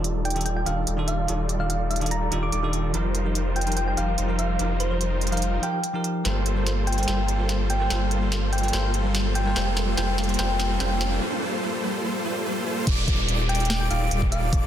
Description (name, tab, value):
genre	future bass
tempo	145 BPM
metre	4/4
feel	half-time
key	unclear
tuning	A4 = 440 Hz
part	bell-like tine electric piano	accompaniment	0.0-11.2 s	Eb3 to C5	-31 LUFS	right 1 dB	sidechain pumping, ping-pong delay
part	Celtic harp	arpeggios	0.0-1.9 s	none	barely audible	none	none
part	supersaw chords	riff	0.0-14.7 s	G3 to D5	-28 LUFS	equal	sidechain pumping, low-pass filter
part	saturated sub bass	bass	0.0-14.7 s	Eb1 to G1	-26 LUFS	equal	sidechain pumping
part	trap drum kit	drums	0.0-14.6 s	crash cymbal, hi-hat, snare drum	-30 LUFS	right 1 dB	overdrive, high-pass filter on snare, high-pass filter on hats, high-pass filter on cymbals, high-pass filter on room
part	thumb-piano-like synth pluck	melody	0.3-11.0, 13.5-14.5 s	C5 to D6	-30 LUFS	equal	chorus, sidechain pumping, ping-pong delay
part	riser and downlifter	sound effects	8.3-14.7 s	none	-33 LUFS	equal	none
part	airy dreamy lead	arpeggios	12.9-14.7 s	D6	-34 LUFS	equal	chorus, sidechain pumping
part	electronic kick drum	drums	12.9-14.6 s	none	-23 LUFS	equal	overdrive
room	moderate digital room reverb, RT60 1.0 s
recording	dense, heavily limited modern master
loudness	-22 LUFS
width	side -10 dB against mid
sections	0.0-12.9 A section; 12.9-14.7 B section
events	build-up 0.0-12.9; filter sweep on supersaw synth 0.0-12.9; filter sweep on synth pluck 0.0-12.9; drum fill 6.3-11.2; break 11.2-12.9; drop 12.9-14.7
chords	0.0 Ebmaj9#11; 2.9 F9sus4; 6.3 Gm11; 9.6 Bbsus2/F; 12.9 Ebmaj9#11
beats	0.04 0.46 0.87 | 1.29 1.70 2.11 2.53 | 2.94 3.35 3.77 4.18 | 4.60 5.01 5.42 5.84 | 6.25 6.67 7.08 7.49 | 7.91 8.32 8.73 9.15 | 9.56 9.97 10.39 10.80 | 11.22 11.63 12.04 12.46 | 12.87 13.29 13.70 14.11 | 14.53